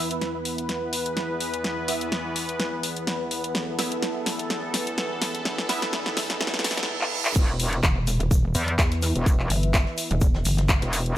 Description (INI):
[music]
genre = bass house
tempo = 126 BPM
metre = 4/4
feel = swing 55% on 16ths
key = unclear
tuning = A4 = 440 Hz
[part]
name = sweeping resonant pad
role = sustained chords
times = 0.0-11.2 s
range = E2 to E5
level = -31 LUFS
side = equal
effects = chorus, sidechain pumping
[part]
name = band-passed chord stab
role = stabs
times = 0.0-6.9 s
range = B3 to E5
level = -34 LUFS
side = right 3 dB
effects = phaser, ensemble chorus, sidechain pumping, digital delay
[part]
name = riser and reverse cymbal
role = sound effects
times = 3.4-7.4 s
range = none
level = -35 LUFS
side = right 4 dB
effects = none
[part]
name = ethereal airy pad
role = texture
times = 0.0-6.9 s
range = E4 to B5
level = -37 LUFS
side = right 1 dB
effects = ensemble chorus, built-in reverb, phaser, sidechain pumping
[part]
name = house drum kit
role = drums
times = 0.1-11.1 s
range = crash cymbal, handclaps, hi-hat, snare drum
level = -27 LUFS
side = left 1 dB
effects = studio reverb
[part]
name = metallic wobble bass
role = bass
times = 7.4-11.2 s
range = E1 to E2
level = -25 LUFS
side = equal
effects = chorus, overdrive, sidechain pumping
[part]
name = electronic kick drum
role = drums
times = 7.4-10.8 s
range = none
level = -21 LUFS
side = equal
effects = studio reverb
[part]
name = soft brush drum kit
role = drums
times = 7.4-11.1 s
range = hi-hat, shaker, snare drum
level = -37 LUFS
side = right 1 dB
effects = high-pass filter on hats, studio reverb, high-pass filter on snare, high-pass filter on perc, high-pass filter on room
[part]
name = pulsing pluck wobble bass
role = bass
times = 7.8-10.8 s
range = E1 to E2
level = -23 LUFS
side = equal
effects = chorus, sidechain pumping
[sound]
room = light reverb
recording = high-pass filter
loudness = -22 LUFS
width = side -13 dB against mid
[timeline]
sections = 0.0-7.4 A section; 7.4-11.2 B section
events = build-up 0.0-7.4; drum fill 0.0-6.9, 7.0-7.4; filter sweep on synth stab 0.0-7.4; filter sweep 0.0-7.4; reverse cymbal 6.4-7.4; drop 7.4-11.2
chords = 0.0 E5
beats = 0.21 0.69 1.17 | 1.64 2.12 2.60 3.07 | 3.55 4.03 4.50 4.98 | 5.45 5.93 6.41 6.88 | 7.36 7.83 8.31 8.79 | 9.26 9.74 10.21 10.69 | 11.17